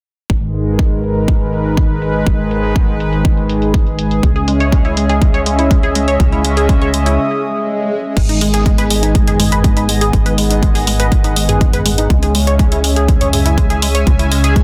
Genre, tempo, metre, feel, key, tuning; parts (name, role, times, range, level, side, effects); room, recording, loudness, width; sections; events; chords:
melodic techno; 122 BPM; 4/4; straight; G# minor; A4 = 440 Hz
sweeping resonant pad; sustained chords; 0.3-14.6 s; G#3 to G#5; -24 LUFS; equal; chorus, sidechain pumping
brassy analog pad; stabs; 0.3-14.6 s; G#2 to C#4; -21 LUFS; equal; lush chorus, sidechain pumping, tape echo
tight sequencer bass; bass; 0.3-14.6 s; G#1 to C#2; -20 LUFS; equal; sidechain pumping
electronic kick drum; drums; 0.3-14.6 s; -15 LUFS; equal
house drum kit; drums; 0.3-14.6 s; crash cymbal, hi-hat, toms; -22 LUFS; equal; sidechain pumping on hats, low-pass filter on hats, sidechain pumping on cymbals, low-pass filter on cymbals, sidechain pumping on toms, low-pass filter on toms, low-pass filter on room
tight sequenced synth; arpeggios; 4.2-14.6 s; G#3 to C#5; -22 LUFS; equal; chorus, sidechain pumping, tape echo
swell; sound effects; 7.4-8.2 s; -25 LUFS; equal
light reverb, digital ambience; dense, heavily limited modern master; -14 LUFS; mono
0.3-8.2 A section; 8.2-14.6 B section
filter sweep on drum 0.3-8.2; filter sweep on analog synth bass 0.3-8.2; filter sweep on analog synth pad 0.3-8.2, 8.2-14.6; break 7.2-8.2; swell 7.4-8.2
0.3 G#m; 4.2 C#m; 8.2 G#m; 12.1 C#m